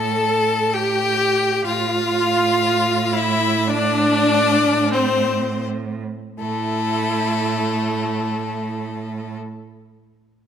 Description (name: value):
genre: classical, slow romantic movement for string quartet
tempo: 37-66 BPM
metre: 4/4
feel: rubato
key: A minor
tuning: A4 = 440 Hz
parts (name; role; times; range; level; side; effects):
- clear violin; melody; 0.0-9.4 s; A4 to A5; -23 LUFS; left 9 dB; none
- rich violin; second line; 0.0-9.4 s; A3 to A4; -23 LUFS; left 3 dB; none
- warm viola; accompaniment; 0.0-9.4 s; C4 to A4; -23 LUFS; right 4 dB; none
- rich cello; bass; 0.0-9.4 s; A2; -25 LUFS; right 6 dB; none
room: moderate concert hall reverb, RT60 1.8 s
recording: close, detailed microphones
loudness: -17 LUFS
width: side -8 dB against mid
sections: 0.0-6.4 A section; 6.4-10.5 B section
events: slowing down 0.0-6.4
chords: 0.0 A5